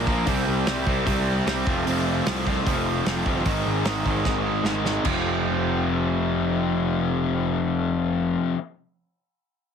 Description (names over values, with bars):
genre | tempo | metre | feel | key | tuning
punk rock | 150 BPM | 4/4 | straight | unclear | A4 = 439 Hz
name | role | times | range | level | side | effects
crunchy overdriven guitar | riff | 0.0-8.6 s | F2 to C4 | -27 LUFS | right 12 dB | none
distorted electric guitar | riff | 0.0-8.6 s | F2 to F4 | -26 LUFS | left 12 dB | distortion
fuzz picked electric bass | bass | 0.0-8.4 s | F1 to C2 | -28 LUFS | equal | overdrive
loose indie drum kit | drums | 0.1-5.1 s | crash cymbal, hi-hat, kick drum, snare drum | -28 LUFS | right 1 dB | none
room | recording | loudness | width
little or no reverb | heavily compressed radio sound, multiband compression | -21 LUFS | side -7 dB against mid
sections
0.0-5.1 A section; 5.1-8.2 B section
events
drum fill 4.3-5.1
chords
0.3 C; 1.7 F; 3.5 Ab; 5.1 F